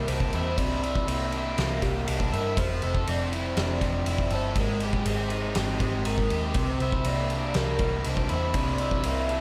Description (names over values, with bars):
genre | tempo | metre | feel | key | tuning
rock, shoegaze and dream pop | 121 BPM | 4/4 | straight | C mixolydian | A4 = 438 Hz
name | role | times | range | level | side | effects
warm velvety synth lead | melody | 0.0-9.4 s | G4 to E5 | -35 LUFS | equal | chorus, tremolo, tape echo
crunchy overdriven guitar | riff | 0.0-9.4 s | C3 to A4 | -32 LUFS | equal | subtle chorus
vintage muted picked electric bass | bass | 0.0-9.4 s | F1 to G2 | -32 LUFS | equal | none
loose indie drum kit | drums | 0.1-9.4 s | kick drum, ride cymbal, snare drum | -32 LUFS | equal | none
room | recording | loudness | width
moderate plate reverb, RT60 2.5 s | dreamy mix soaked in reverb | -27 LUFS | mono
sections
0.0-9.4 A section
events
none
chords
0.0 C9; 2.6 Fmaj7; 4.6 Abmaj7; 6.6 C9